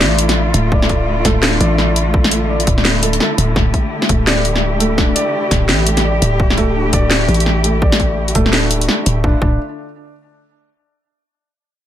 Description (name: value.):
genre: half-time drum and bass.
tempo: 169 BPM.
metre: 4/4.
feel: swing 60% on 16ths, half-time.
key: D minor.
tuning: A4 = 440 Hz.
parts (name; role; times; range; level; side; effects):
warm chamber cello section; sustained chords; 0.0-9.4 s; D3 to G4; -21 LUFS; left 1 dB; sidechain pumping.
felt-muted upright piano; arpeggios; 0.0-9.6 s; A3 to D5; -20 LUFS; equal; ping-pong delay.
growling 808-style bass; bass; 0.0-9.6 s; D1 to A1; -17 LUFS; equal; none.
drum and bass drum kit; drums; 0.0-9.1 s; hi-hat, snare drum; -16 LUFS; left 1 dB; none.
electronic kick drum; drums; 0.7-9.5 s; none; -16 LUFS; equal; none.
room: light reverb, digital ambience.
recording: none.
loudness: -12 LUFS.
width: side -11 dB against mid.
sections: 0.0-9.2 A section; 9.2-10.7 B section.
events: drop 0.0-9.2.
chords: 0.0 Dmadd9; 9.2 N.C..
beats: 0.01 0.36 | 0.72 1.07 1.43 1.78 | 2.14 2.50 2.85 3.21 | 3.56 3.92 4.27 4.62 | 4.98 5.33 5.69 6.04 | 6.40 6.75 7.11 7.46 | 7.82 8.18 8.53 8.88 | 9.24.